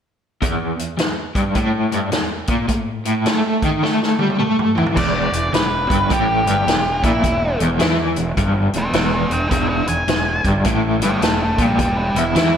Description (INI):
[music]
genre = blues rock power trio and southern rock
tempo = 106 BPM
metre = 4/4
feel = swing 64% on 8ths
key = unclear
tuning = A4 = 440 Hz
[part]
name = crunchy overdriven guitar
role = riff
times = 0.4-12.6 s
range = E2 to A3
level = -19 LUFS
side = equal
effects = tremolo, slapback echo
[part]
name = vintage drum kit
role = drums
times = 0.4-12.5 s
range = crash cymbal, hi-hat, kick drum, snare drum, toms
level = -22 LUFS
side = equal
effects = none
[part]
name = octave-fuzz lead guitar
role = melody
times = 5.0-12.6 s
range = D4 to G#5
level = -20 LUFS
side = equal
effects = distortion, slapback echo
[part]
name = fuzz fingered electric bass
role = bass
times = 5.0-12.6 s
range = E1 to E2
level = -24 LUFS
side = equal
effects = overdrive
[sound]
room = wet recital hall reverb, RT60 1.5 s, studio reverb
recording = big arena sound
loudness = -16 LUFS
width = side -8 dB against mid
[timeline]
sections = 0.4-5.0 A section; 5.0-12.6 B section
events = drum fill 3.8-5.0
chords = 0.4 Em; 2.7 A5; 5.0 E5